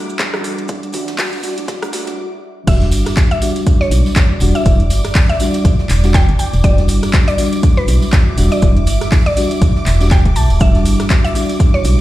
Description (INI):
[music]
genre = deep house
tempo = 121 BPM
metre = 4/4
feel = swing 57% on 16ths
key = E minor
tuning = A4 = 439 Hz
[part]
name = deep dark ambient pad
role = sustained chords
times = 0.0-12.0 s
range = G3 to E5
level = -27 LUFS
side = right 2 dB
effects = chorus, built-in reverb, sidechain pumping
[part]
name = mellow FM electric piano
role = stabs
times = 0.0-12.0 s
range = G3 to F#4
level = -21 LUFS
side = equal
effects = chorus, sidechain pumping, tape echo
[part]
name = organ-like FM bass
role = bass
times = 0.0-12.0 s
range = D1 to B1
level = -13 LUFS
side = equal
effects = sidechain pumping, high-pass filter
[part]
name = string machine, violins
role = texture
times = 0.0-12.0 s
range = D6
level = -32 LUFS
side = left 1 dB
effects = ensemble chorus, sidechain pumping
[part]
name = jazz brush drum kit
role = drums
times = 0.1-12.0 s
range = hi-hat, shaker, snare drum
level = -34 LUFS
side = right 2 dB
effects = none
[part]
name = deep house drum kit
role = drums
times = 0.2-12.0 s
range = crash cymbal, handclaps, hi-hat, rim click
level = -23 LUFS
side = equal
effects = overdrive, studio reverb
[part]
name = electronic kick drum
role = drums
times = 0.2-11.7 s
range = none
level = -12 LUFS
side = equal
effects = overdrive, studio reverb
[part]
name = congas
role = percussion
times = 0.3-2.2 s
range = none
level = -36 LUFS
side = left 2 dB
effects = none
[part]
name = mallet-like synth pluck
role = melody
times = 2.7-11.9 s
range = B4 to A5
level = -22 LUFS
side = left 1 dB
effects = chorus, vintage 12-bit sampler grit, tape echo
[part]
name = tambourine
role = percussion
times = 2.7-12.0 s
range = none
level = -31 LUFS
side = right 2 dB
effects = none
[sound]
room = light reverb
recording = played on a big sound system in a bare room, large studio reverb, high-pass filter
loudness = -11 LUFS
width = side -15 dB against mid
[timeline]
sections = 0.0-2.7 A section; 2.7-12.0 B section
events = build-up 0.0-2.7; filter sweep 0.0-2.7; stop 2.2-2.7; drop 2.7-12.0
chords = 0.0 Em9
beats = 0.20 | 0.69 1.19 1.68 2.18 | 2.67 3.17 3.67 4.16 | 4.66 5.15 5.65 6.14 | 6.64 7.14 7.63 8.13 | 8.62 9.12 9.62 10.11 | 10.61 11.10 11.60